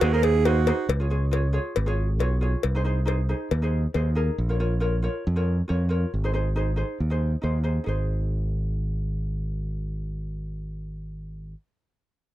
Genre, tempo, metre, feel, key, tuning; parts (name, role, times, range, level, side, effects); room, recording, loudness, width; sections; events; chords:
calypso; 137 BPM; 4/4; swing 54% on 16ths; Ab major; A4 = 440 Hz
warm alto saxophone; second line; 0.0-0.9 s; Gb4 to Bb4; -24 LUFS; right 8 dB
ukulele; accompaniment; 0.0-11.5 s; Eb4 to Db5; -30 LUFS; equal
modern bright fingered electric bass; bass; 0.0-11.5 s; Ab1 to F2; -24 LUFS; equal
cowbell; percussion; 0.0-4.1 s; -28 LUFS; left 8 dB
little or no reverb; dry, close 1970s-style studio recording; -23 LUFS; side -14 dB against mid
0.9-7.9 A section; 7.9-11.4 B section
0.0 Ab7; 0.9 Db; 2.6 Ab/C; 4.4 Bbm; 6.1 Ab